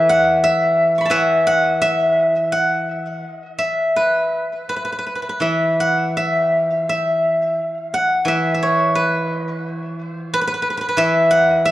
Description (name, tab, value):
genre	chinese traditional, Chinese solo plucked strings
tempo	80-91 BPM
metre	4/4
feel	rubato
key	E zhi mode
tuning	A4 = 440 Hz
part	steel-string zither	solo	0.0-11.7 s	E3 to C#6	-16 LUFS	equal	none
room	light reverb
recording	worn, warbling old tape, cassette tape, warbly pitch drift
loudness	-16 LUFS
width	side -15 dB against mid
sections	0.0-11.7 A section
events	none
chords	none